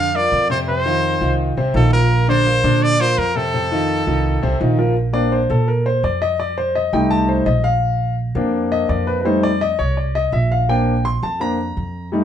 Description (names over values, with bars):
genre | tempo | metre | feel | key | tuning
latin, salsa | 168 BPM | 4/4 | straight | Bb major | A4 = 445 Hz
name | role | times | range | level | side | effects
bright trumpet | melody | 0.0-4.6 s | A4 to F5 | -18 LUFS | equal | slapback echo
clear concert grand piano | accompaniment | 0.0-12.2 s | C3 to C6 | -19 LUFS | left 2 dB | none
upright bass | bass | 0.0-12.2 s | Bb1 to Bb2 | -20 LUFS | right 1 dB | none
room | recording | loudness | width
moderate studio reverb, RT60 0.8 s | band playing live in one room, nothing above 10.5 kHz | -15 LUFS | side -9 dB against mid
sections
0.0-5.0 A section; 5.0-12.2 B section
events
grand piano solo 5.0-12.2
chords
0.0 Bbadd9; 0.7 F5; 2.1 Bbadd9; 3.5 F7; 5.0 Bbadd9; 6.4 F7; 7.8 Bbadd9; 9.3 F7; 10.7 Bbadd9